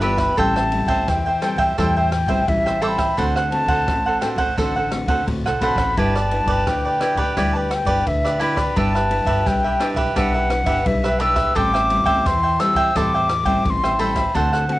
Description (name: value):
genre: samba and choro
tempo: 86 BPM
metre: 4/4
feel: straight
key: G major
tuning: A4 = 440 Hz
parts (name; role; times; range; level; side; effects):
- wooden flute; second line; 0.0-14.8 s; E5 to E6; -21 LUFS; left 2 dB; cassette tape
- cavaquinho; accompaniment; 0.0-14.8 s; D4 to G5; -22 LUFS; right 3 dB; cassette tape
- nylon-string guitar; accompaniment; 0.0-14.8 s; G2 to B4; -25 LUFS; left 2 dB; cassette tape
- upright bass; bass; 0.0-14.8 s; G1 to E2; -25 LUFS; equal; none
- open jazz drum kit; drums; 0.0-14.8 s; kick drum, ride cymbal, rim click; -26 LUFS; equal; cassette tape
room: light reverb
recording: home recording on cassette, nothing above 10.4 kHz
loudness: -17 LUFS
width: side -17 dB against mid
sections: 0.0-14.8 A section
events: flute solo 0.0-14.8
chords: 0.4 Am7; 3.2 D7; 6.0 G6; 11.6 Am7